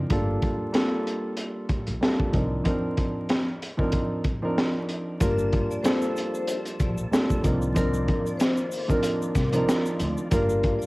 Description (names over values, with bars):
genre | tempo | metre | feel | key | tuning
hip hop, boom-bap hip-hop | 94 BPM | 4/4 | swing 55% on 16ths | G minor | A4 = 436 Hz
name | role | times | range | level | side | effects
dark concert grand piano | accompaniment | 0.0-10.9 s | F3 to Bb4 | -27 LUFS | right 1 dB | high-pass filter, low-pass filter, cassette tape
upright bass | bass | 0.0-10.7 s | G1 to D2 | -29 LUFS | equal | none
crunchy breakbeat drum kit | drums | 0.1-10.8 s | hi-hat, kick drum, snare drum | -26 LUFS | equal | vintage 12-bit sampler grit
vibraphone with medium hard mallets | melody | 5.2-10.9 s | Bb4 to D5 | -30 LUFS | left 2 dB | high-pass filter, low-pass filter
percussive tonewheel organ | sustained chords | 5.2-10.9 s | Bb2 to A5 | -38 LUFS | equal | overdrive, chorus vibrato, slow rotary speaker, high-pass filter, low-pass filter, cassette tape
egg shaker | percussion | 5.2-10.9 s | none | -45 LUFS | left 3 dB | none
room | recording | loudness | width
light reverb, studio reverb | home recording on cassette, vinyl crackle | -23 LUFS | side -22 dB against mid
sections
0.0-5.2 A section; 5.2-10.9 B section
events
none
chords
0.1 Gm9; 2.3 Cm11; 5.2 Gm9; 7.4 Cm11; 10.3 Gm7